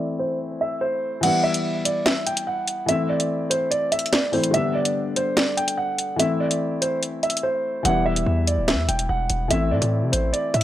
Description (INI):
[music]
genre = hip hop, drill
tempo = 145 BPM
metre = 4/4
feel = half-time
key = E minor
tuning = A4 = 439 Hz
[part]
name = warm concert grand piano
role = melody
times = 0.0-10.6 s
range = C5 to G5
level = -24 LUFS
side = right 2 dB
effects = low-pass filter
[part]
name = felt-muted upright piano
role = accompaniment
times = 0.0-10.6 s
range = D3 to E4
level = -26 LUFS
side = left 3 dB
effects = low-pass filter
[part]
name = drill drum kit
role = drums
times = 1.2-10.6 s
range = crash cymbal, hi-hat, snare drum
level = -23 LUFS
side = equal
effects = none
[part]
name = hard-hitting 808-style bass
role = bass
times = 7.8-10.6 s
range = D1 to C3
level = -23 LUFS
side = equal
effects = none
[sound]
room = small room ambience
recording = dry, gritty hardware recording, low-pass filter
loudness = -20 LUFS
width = side -13 dB against mid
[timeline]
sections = 0.0-1.2 A section; 1.2-10.6 B section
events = filter sweep 0.0-1.2; kick muted 1.2-7.9; drums muted 7.4-7.9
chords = 0.0 Am; 1.2 Em; 2.9 Am; 4.5 G; 6.2 Am; 7.9 Em; 9.5 Am